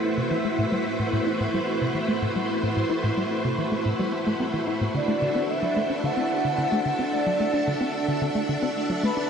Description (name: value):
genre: ambient, sequencer-driven space music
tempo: 110 BPM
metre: 4/4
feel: straight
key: A dorian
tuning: A4 = 440 Hz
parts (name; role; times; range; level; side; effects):
- string machine, full ensemble; sustained chords; 0.0-9.3 s; A3 to A5; -26 LUFS; equal; ensemble chorus
- wind-like tuned noise texture; texture; 0.0-9.3 s; F#4 to F#5; -34 LUFS; right 2 dB; built-in reverb
- tight sequencer bass; riff; 0.2-9.3 s; A2 to E4; -28 LUFS; left 1 dB; wide subtle chorus, ping-pong delay
- expressive synth lead; melody; 5.0-9.3 s; B4 to F#5; -27 LUFS; right 1 dB; wide subtle chorus, ping-pong delay
room: wet huge ambient reverb, RT60 7.5 s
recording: none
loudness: -22 LUFS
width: side -7 dB against mid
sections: 0.0-9.3 A section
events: filter sweep on analog synth bass 0.0-9.3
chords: 0.0 Am; 4.9 D7